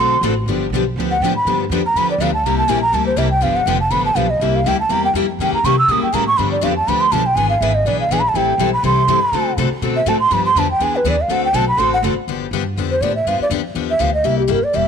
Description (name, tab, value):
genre	acoustic string swing (jazz manouche)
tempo	244 BPM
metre	4/4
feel	swing 54% on 8ths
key	G mixolydian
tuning	A4 = 438 Hz
part	breathy mellow bansuri	melody	0.0-14.9 s	G4 to E6	-17 LUFS	right 2 dB	none
part	picked steel-string acoustic guitar	accompaniment	0.0-14.9 s	C3 to A4	-21 LUFS	left 14 dB	none
part	picked steel-string acoustic guitar	accompaniment	0.0-12.1 s	C3 to B4	-25 LUFS	right 13 dB	none
part	upright bass	bass	0.0-14.9 s	E1 to D3	-22 LUFS	equal	none
room	light reverb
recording	1960s-style stereo with parts hard left and right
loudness	-14 LUFS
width	side -7 dB against mid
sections	0.5-12.3 A section; 12.3-14.9 A section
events	bansuri solo 0.0-12.3, 12.3-14.9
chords	0.5 G7; 2.4 C7; 3.4 G7; 4.4 C7; 5.4 C#dim7; 6.4 G7; 7.4 E7; 8.3 Am7; 9.3 D7; 10.3 G7; 10.8 E7; 11.3 D7; 12.3 G7; 14.2 C7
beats	0.23 | 0.47 0.72 0.97 1.21 | 1.46 1.71 1.95 2.20 | 2.44 2.69 2.94 3.18 | 3.43 3.67 3.92 4.17 | 4.41 4.66 4.90 5.15 | 5.39 5.64 5.89 6.13 | 6.38 6.62 6.87 7.12 | 7.36 7.61 7.85 8.10 | 8.34 8.59 8.84 9.08 | 9.33 9.57 9.82 10.06 | 10.31 10.56 10.80 11.05 | 11.29 11.54 11.78 12.03 | 12.28 12.52 12.77 13.01 | 13.26 13.50 13.75 13.99 | 14.24 14.48 14.73